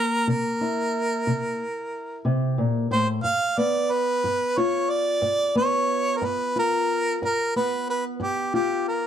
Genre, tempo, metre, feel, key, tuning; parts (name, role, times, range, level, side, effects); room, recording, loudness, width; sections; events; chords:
blues; 60 BPM (dotted quarters); 12/8; straight; G mixolydian; A4 = 437 Hz
clear harmonica; melody; 0.0-9.1 s; G4 to F5; -23 LUFS; right 2 dB
fingerpicked steel-string acoustic guitar; accompaniment; 0.0-9.1 s; G2 to F4; -26 LUFS; left 2 dB
moderate studio reverb, RT60 0.7 s; dark, warm production; -22 LUFS; side -9 dB against mid
0.0-9.1 A section
0.0 C7; 3.3 G7